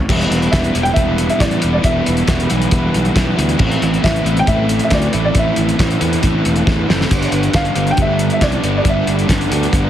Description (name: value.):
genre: indie rock.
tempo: 137 BPM.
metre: 4/4.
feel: straight.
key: E minor.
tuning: A4 = 440 Hz.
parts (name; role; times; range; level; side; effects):
airy breathy pad; sustained chords; 0.0-9.9 s; G3 to B4; -29 LUFS; equal; none.
fuzz fingered electric bass; bass; 0.0-9.9 s; E1 to E2; -19 LUFS; equal; overdrive.
crunchy overdriven guitar; riff; 0.1-9.9 s; G2 to E4; -17 LUFS; equal; none.
cloth-damped thuddy drum kit; drums; 0.1-9.8 s; crash cymbal, hi-hat, kick drum, snare drum; -18 LUFS; equal; none.
clear upright piano; melody; 0.5-9.3 s; D5 to G5; -20 LUFS; equal; slapback echo, plate reverb.
room: light reverb.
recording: heavily compressed radio sound.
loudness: -13 LUFS.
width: side -11 dB against mid.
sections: 0.1-9.9 A section.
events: drum fill 6.7-7.1.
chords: 0.1 Em; 3.6 Amadd9; 7.1 Gadd9.